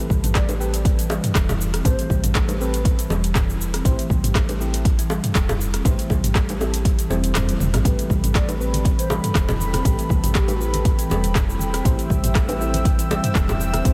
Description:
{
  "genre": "afro house",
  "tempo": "120 BPM",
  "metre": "4/4",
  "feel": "swing 54% on 16ths",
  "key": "A minor",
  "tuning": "A4 = 440 Hz",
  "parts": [
    { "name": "marimba with soft mallets", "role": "arpeggios", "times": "0.0-13.9 s", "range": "E3 to G4", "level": "-31 LUFS", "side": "equal", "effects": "sidechain pumping, diffuse ambient delay" },
    { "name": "deep mellow chord stab", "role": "stabs", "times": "0.0-13.9 s", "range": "C4 to C5", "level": "-34 LUFS", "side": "equal", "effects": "chorus, phaser, sidechain pumping, diffuse ambient delay" },
    { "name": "deep house drum kit", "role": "drums", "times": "0.0-13.9 s", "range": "handclaps, hi-hat, rim click, shaker, toms", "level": "-29 LUFS", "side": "equal", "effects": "overdrive" },
    { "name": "woody FM bass", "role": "bass", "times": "0.1-13.9 s", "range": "E1 to C2", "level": "-27 LUFS", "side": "equal", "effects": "tube saturation, sidechain pumping" },
    { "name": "electronic kick drum", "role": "drums", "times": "0.1-13.9 s", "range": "none", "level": "-22 LUFS", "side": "equal", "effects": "overdrive" },
    { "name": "mellow hollow bansuri", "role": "melody", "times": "0.4-2.2, 8.4-10.7 s", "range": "G4 to D5", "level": "-38 LUFS", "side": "equal", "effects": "diffuse ambient delay" },
    { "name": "bongos", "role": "percussion", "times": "0.5-13.6 s", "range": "none", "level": "-33 LUFS", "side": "equal", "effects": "none" },
    { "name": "dark analog pad", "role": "sustained chords", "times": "7.9-13.9 s", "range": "C4 to E6", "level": "-31 LUFS", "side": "equal", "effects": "chorus, sidechain pumping" },
    { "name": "congas", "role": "percussion", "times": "8.1-13.8 s", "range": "none", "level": "-34 LUFS", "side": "equal", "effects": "none" }
  ],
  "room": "light reverb, digital ambience",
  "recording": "none",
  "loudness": "-20 LUFS",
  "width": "mono",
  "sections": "0.0-13.9 A section",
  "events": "kick drops out 7.4-7.9; drum fill 7.4-7.9",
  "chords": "0.0 Am9; 3.9 C; 7.9 Am9; 11.9 C"
}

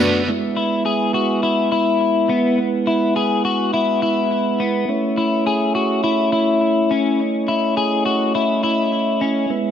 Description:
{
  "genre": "dream pop",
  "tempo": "104 BPM",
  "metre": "4/4",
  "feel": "straight",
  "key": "E major",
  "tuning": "A4 = 440 Hz",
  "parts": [
    { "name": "mellow tonewheel organ", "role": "sustained chords", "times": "0.0-9.7 s", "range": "G#3 to F#5", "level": "-20 LUFS", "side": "right 2 dB", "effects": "slow rotary speaker" },
    { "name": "electric guitar at the edge of break-up", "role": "arpeggios", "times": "0.0-9.5 s", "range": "B3 to G#4", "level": "-19 LUFS", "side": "left 4 dB", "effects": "analog chorus, tape echo" }
  ],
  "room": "wet plate reverb, RT60 1.8 s, small room ambience",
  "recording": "echo-heavy mix",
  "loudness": "-16 LUFS",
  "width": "side -9 dB against mid",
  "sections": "0.3-9.7 A section",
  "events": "none",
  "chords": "0.3 E; 4.9 A"
}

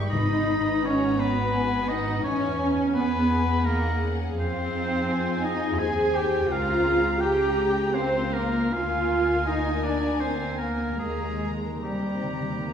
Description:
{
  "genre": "classical, slow romantic movement for symphony orchestra",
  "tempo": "72-86 BPM",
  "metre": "3/4",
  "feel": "rubato",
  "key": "unclear",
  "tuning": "A4 = 441 Hz",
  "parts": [
    { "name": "muted studio violin section", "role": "melody", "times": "0.0-12.7 s", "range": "F5 to C#6", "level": "-37 LUFS", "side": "left 3 dB", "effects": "none" },
    { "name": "clear oboe", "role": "second line", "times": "0.0-12.7 s", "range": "G4 to Ab5", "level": "-30 LUFS", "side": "equal", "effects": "none" },
    { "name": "muted studio violin section", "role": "second line", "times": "0.0-12.7 s", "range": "Bb3 to C5", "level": "-34 LUFS", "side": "left 3 dB", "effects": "none" },
    { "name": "muted studio viola section", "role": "accompaniment", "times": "0.0-12.7 s", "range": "G3 to Ab4", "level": "-31 LUFS", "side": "right 1 dB", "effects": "none" },
    { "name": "clear French horn section", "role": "sustained chords", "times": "0.0-12.7 s", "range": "G3 to Ab4", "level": "-29 LUFS", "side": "left 2 dB", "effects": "none" },
    { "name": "muted studio cello section", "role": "bass", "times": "0.0-12.7 s", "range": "G3 to Ab4", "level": "-30 LUFS", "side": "right 2 dB", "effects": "none" },
    { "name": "muted studio double bass section", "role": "bass", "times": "0.0-12.7 s", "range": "G1 to F2", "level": "-30 LUFS", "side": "right 1 dB", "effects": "none" },
    { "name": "timpani", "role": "percussion", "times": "0.1-1.2, 11.0-12.7 s", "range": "G#2 to Eb3", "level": "-33 LUFS", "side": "left 1 dB", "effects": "none" }
  ],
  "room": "wet recital hall reverb, RT60 1.6 s",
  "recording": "heard from further back in the room",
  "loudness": "-22 LUFS",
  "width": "side -8 dB against mid",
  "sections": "0.0-12.7 A section",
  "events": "timpani fill 11.0-12.7",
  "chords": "0.1 G#m; 2.2 E; 4.4 Fm7; 6.5 Bbm/Db; 8.7 Bb7/D; 11.0 Eb"
}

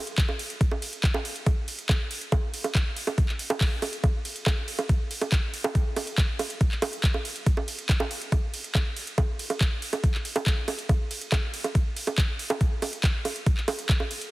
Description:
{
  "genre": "trance",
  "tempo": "140 BPM",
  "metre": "4/4",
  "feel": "straight",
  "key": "none",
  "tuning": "none",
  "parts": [
    { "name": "garage drum kit", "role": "drums", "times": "0.1-14.3 s", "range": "bongos, handclaps, hi-hat, ride cymbal", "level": "-29 LUFS", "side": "right 2 dB", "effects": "overdrive" },
    { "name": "electronic kick drum", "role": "drums", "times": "0.2-14.0 s", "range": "none", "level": "-24 LUFS", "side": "equal", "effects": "overdrive" }
  ],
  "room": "digital ambience",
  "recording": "heavily compressed radio sound, multiband compression",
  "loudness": "-24 LUFS",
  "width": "side -19 dB against mid",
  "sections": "0.0-14.3 A section",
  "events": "none",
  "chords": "none"
}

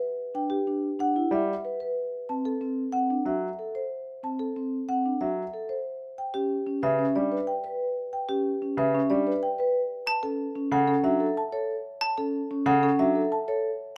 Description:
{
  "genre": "classical, minimalist pattern music",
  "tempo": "185 BPM",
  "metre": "6/4",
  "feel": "straight",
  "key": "D major from 5.9 s",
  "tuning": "A4 = 441 Hz",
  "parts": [
    { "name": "marimba with medium mallets", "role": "melody", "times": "0.0-13.7 s", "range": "G4 to A5", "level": "-31 LUFS", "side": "equal", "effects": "none" },
    { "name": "vibraphone with soft mallets", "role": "arpeggios", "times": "0.3-13.7 s", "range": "C4 to B4", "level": "-30 LUFS", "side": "equal", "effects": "none" },
    { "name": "bright grand piano", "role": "accompaniment", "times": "1.3-13.2 s", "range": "C#3 to G3", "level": "-32 LUFS", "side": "equal", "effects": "none" },
    { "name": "xylophone with wooden mallets", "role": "arpeggios", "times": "10.1-12.2 s", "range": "A5", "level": "-31 LUFS", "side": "equal", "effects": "none" }
  ],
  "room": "light reverb",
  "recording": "none",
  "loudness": "-28 LUFS",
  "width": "mono",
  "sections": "0.0-5.9 A section; 5.9-14.0 B section",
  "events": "none",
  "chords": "0.0 G; 2.0 D7; 5.9 Em (rootless); 9.7 Dmaj7(no3) (rootless)"
}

